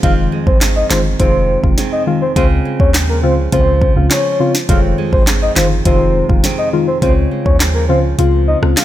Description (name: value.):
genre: dancehall.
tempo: 103 BPM.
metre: 4/4.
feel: straight.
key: F minor.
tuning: A4 = 440 Hz.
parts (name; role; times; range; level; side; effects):
soft octave-layered synth lead; melody; 0.0-8.8 s; Bb4 to F5; -18 LUFS; left 1 dB; chorus, tremolo, ping-pong delay.
deep mellow chord stab; accompaniment; 0.0-8.8 s; Db3 to F4; -17 LUFS; left 3 dB; chorus.
nylon-string guitar; arpeggios; 0.0-8.8 s; F2 to C4; -22 LUFS; right 8 dB; ping-pong delay.
warm 808-style bass; bass; 0.0-8.7 s; F1 to Eb2; -16 LUFS; equal; none.
afro-pop drum kit; drums; 0.0-8.8 s; handclaps, hi-hat, kick drum, rim click, snare drum; -15 LUFS; equal; none.
room: little or no reverb.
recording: none.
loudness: -11 LUFS.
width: side -13 dB against mid.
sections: 0.0-8.8 A section.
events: kick muted 8.2-8.8.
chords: 0.0 Fm7; 2.4 Dbmaj7; 4.7 Fm7; 7.0 Dbmaj7.